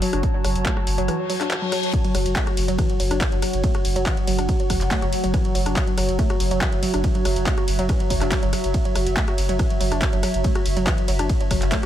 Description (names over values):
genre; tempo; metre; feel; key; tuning
driving peak-time techno; 141 BPM; 4/4; straight; F# minor; A4 = 440 Hz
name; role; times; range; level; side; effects
woody wave-folded pluck; riff; 0.0-11.9 s; E3 to F#4; -28 LUFS; equal; chorus, tube saturation, sidechain pumping, ping-pong delay
deep dark ambient pad; drone; 0.0-11.9 s; F#3; -30 LUFS; right 2 dB; chorus, built-in reverb, sidechain pumping
punchy analog drum machine; drums; 0.0-11.9 s; handclaps, hi-hat, ride cymbal, rim click; -28 LUFS; equal; sidechain pumping on hats, sidechain pumping on cymbals
warbly tape-like pad; texture; 0.0-11.9 s; F#4 to A5; -28 LUFS; equal; chorus, built-in reverb, sidechain pumping
saturated sub bass; bass; 0.1-11.9 s; F#1; -25 LUFS; equal; overdrive, sidechain pumping, low-pass filter
electronic kick drum; drums; 0.2-11.8 s; none; -22 LUFS; equal; none
reverse cymbal; sound effects; 1.2-1.9 s; none; -32 LUFS; left 6 dB; none
room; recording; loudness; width
digital ambience; none; -19 LUFS; side -11 dB against mid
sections
0.0-11.9 A section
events
reverse cymbal 1.2-1.9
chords
0.0 F#5